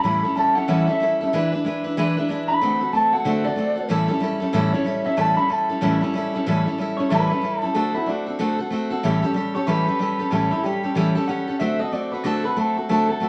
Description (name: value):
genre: rock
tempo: 187 BPM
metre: 4/4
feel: swing 61% on 8ths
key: A mixolydian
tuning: A4 = 440 Hz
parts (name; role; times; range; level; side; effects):
- electric guitar through a small old amp; melody; 0.0-13.3 s; D4 to B5; -25 LUFS; equal; none
- picked steel-string acoustic guitar; accompaniment; 0.0-13.3 s; A2 to B4; -24 LUFS; equal; none
room: light reverb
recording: vinyl crackle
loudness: -22 LUFS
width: mono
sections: 0.0-6.5 A section; 6.5-13.3 B section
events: clean electric guitar solo 0.0-6.5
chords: 0.0 A7; 1.3 E7; 2.6 D7; 3.9 A7; 7.7 D7; 9.0 A7; 11.6 D7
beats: | 0.04 0.36 0.68 1.00 | 1.32 1.65 1.97 2.29 | 2.61 2.93 3.25 3.57 | 3.90 4.22 4.54 4.86 | 5.18 5.50 5.82 6.14 | 6.46 6.78 7.10 7.42 | 7.75 8.07 8.39 8.71 | 9.03 9.35 9.67 9.99 | 10.32 10.64 10.96 11.28 | 11.60 11.92 12.24 12.57 | 12.89 13.21